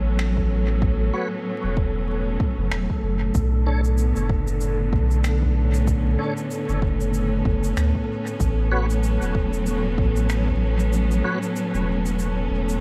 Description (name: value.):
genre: ambient dub.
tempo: 95 BPM.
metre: 4/4.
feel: swing 58% on 16ths.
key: unclear.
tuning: A4 = 439 Hz.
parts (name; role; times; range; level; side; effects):
rich chamber string section; sustained chords; 0.0-12.8 s; A2 to C#4; -28 LUFS; equal; none.
soft dub sub bass; bass; 0.0-12.8 s; E1 to D2; -24 LUFS; equal; none.
wind-like tuned noise texture; texture; 0.0-12.8 s; A4; -35 LUFS; equal; built-in reverb.
electronic finger snaps and shaker; drums; 0.2-12.8 s; none; -38 LUFS; equal; dub echo.
electronic kick drum; drums; 0.4-10.6 s; none; -27 LUFS; equal; overdrive.
tonewheel organ; stabs; 1.1-11.4 s; D4 to C#5; -34 LUFS; equal; overdrive, chorus vibrato, slow rotary speaker, dub echo.
room: little or no reverb.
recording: echo-heavy mix, vinyl crackle.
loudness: -23 LUFS.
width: mono.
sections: 0.0-12.8 A section.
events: kick drops out 10.9-12.8.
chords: 0.0 A69; 3.3 Bm9; 8.4 A69.